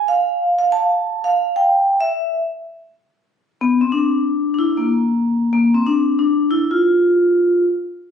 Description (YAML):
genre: jazz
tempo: 187 BPM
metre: 3/4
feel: swing 63% on 8ths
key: unclear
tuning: A4 = 442 Hz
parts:
  - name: vibraphone with medium mallets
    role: solo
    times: 0.0-7.6 s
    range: Bb3 to A5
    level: -15 LUFS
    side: equal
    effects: none
room: moderate studio reverb, RT60 0.6 s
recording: recorded on a phone in the room, studio reverb, compression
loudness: -15 LUFS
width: side -8 dB against mid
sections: 0.0-3.9 A section; 3.9-8.1 B section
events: vibraphone solo 0.0-3.9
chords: none